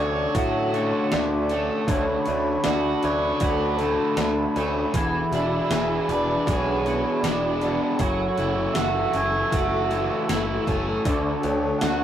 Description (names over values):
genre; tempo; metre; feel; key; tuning
rock, shoegaze and dream pop; 78 BPM; 4/4; straight; D lydian; A4 = 441 Hz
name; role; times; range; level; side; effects
breathy flute-like synth lead; melody; 0.0-12.0 s; A4 to F#5; -28 LUFS; equal; chorus
dark analog pad; sustained chords; 0.0-12.0 s; G#4 to E6; -30 LUFS; right 1 dB; chorus
biting overdriven guitar; riff; 0.0-12.0 s; D3 to C#5; -27 LUFS; right 4 dB; none
overdriven semi-hollow guitar; riff; 0.0-12.0 s; E2 to D4; -28 LUFS; left 4 dB; none
modern bright picked electric bass; bass; 0.0-12.0 s; E1 to A2; -28 LUFS; equal; none
detuned 8-bit digital drum machine; drums; 0.3-12.0 s; hi-hat, kick drum, snare drum; -27 LUFS; equal; overdrive
room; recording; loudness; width
wet booth ambience, RT60 0.2 s; rough rehearsal-room recording; -21 LUFS; side -10 dB against mid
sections
0.0-12.0 A section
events
none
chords
0.0 Dmaj7; 4.9 E7; 8.0 F#m7; 11.1 Dmaj7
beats
0.35 1.12 | 1.88 2.65 3.41 4.18 | 4.94 5.71 6.47 7.24 | 8.00 8.76 9.53 10.29 | 11.06 11.82